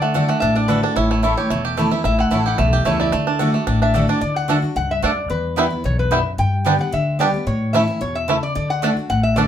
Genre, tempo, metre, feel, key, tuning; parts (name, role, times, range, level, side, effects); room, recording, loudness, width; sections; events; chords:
bluegrass; 221 BPM; 4/4; swing 53% on 8ths; D major; A4 = 440 Hz
lap resonator guitar; melody; 0.0-9.5 s; A4 to G5; -23 LUFS; left 2 dB
picked steel-string acoustic guitar; accompaniment; 0.0-9.5 s; E2 to G4; -22 LUFS; left 1 dB
bluegrass banjo; arpeggios; 0.0-9.4 s; G3 to G4; -21 LUFS; right 5 dB
upright bass; bass; 0.0-9.5 s; E1 to A2; -23 LUFS; left 1 dB
mandolin; stabs; 0.1-9.5 s; A3 to A5; -24 LUFS; right 2 dB
wet studio ambience, RT60 0.5 s; band playing live in one room; -16 LUFS; side -10 dB against mid
0.0-4.2 A section; 4.2-9.5 B section
0.0 D; 1.0 A; 3.1 D; 5.3 Em; 6.4 G; 7.5 A; 8.6 D